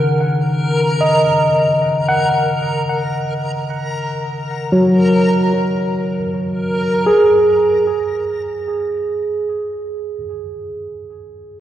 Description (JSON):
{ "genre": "ambient", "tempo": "free time", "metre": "none", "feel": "none", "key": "unclear", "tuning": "A4 = 440 Hz", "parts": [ { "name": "overdriven tine electric piano", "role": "arpeggios", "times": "0.0-11.6 s", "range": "C#3 to F#5", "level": "-16 LUFS", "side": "equal", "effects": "ping-pong delay" }, { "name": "backwards swelling texture", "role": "texture", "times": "0.0-7.1 s", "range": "A#4 to A#5", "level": "-21 LUFS", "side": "equal", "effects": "built-in reverb" } ], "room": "wet lush hall reverb, RT60 2.6 s", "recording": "worn, warbling old tape, cassette tape, warbly pitch drift", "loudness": "-14 LUFS", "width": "side -11 dB against mid", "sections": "0.0-7.1 A section; 7.1-11.3 B section", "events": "none", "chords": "0.0 C#sus2; 7.1 N.C.", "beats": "free time" }